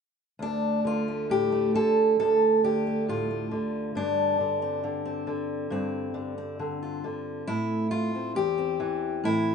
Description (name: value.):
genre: folk, solo fingerstyle acoustic guitar.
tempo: 68 BPM.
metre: 4/4.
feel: straight.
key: D minor.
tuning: A4 = 440 Hz.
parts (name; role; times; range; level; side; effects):
fingerpicked steel-string acoustic guitar; solo; 0.4-9.5 s; D2 to A4; -24 LUFS; equal; none.
room: light reverb.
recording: nothing above 10.6 kHz.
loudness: -24 LUFS.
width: side -6 dB against mid.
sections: 0.4-9.5 A section.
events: none.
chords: 0.4 Dm; 4.0 G7sus4; 7.5 Am7.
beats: | 0.39 1.28 2.18 3.07 | 3.95 4.83 5.71 6.59 | 7.47 8.36 9.25.